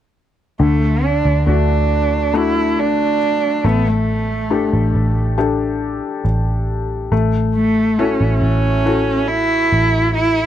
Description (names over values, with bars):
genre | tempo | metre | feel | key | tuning
pop | 69 BPM | 4/4 | straight | D major | A4 = 440 Hz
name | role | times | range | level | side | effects
warm cello | melody | 0.6-10.5 s | A3 to E4 | -17 LUFS | right 3 dB | none
felt-muted upright piano | accompaniment | 0.6-10.5 s | D3 to A4 | -20 LUFS | left 6 dB | none
vintage muted picked electric bass | bass | 0.6-10.5 s | A1 to D2 | -18 LUFS | right 1 dB | none
room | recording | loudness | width
light reverb | dry, close 1970s-style studio recording | -14 LUFS | side -11 dB against mid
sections
0.6-10.5 A section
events
none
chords
0.6 D; 3.6 A7sus4; 7.1 F#m7/A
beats
| 0.60 1.47 2.34 3.21 | 4.08 4.95 5.82 6.68 | 7.55 8.42 9.29 10.16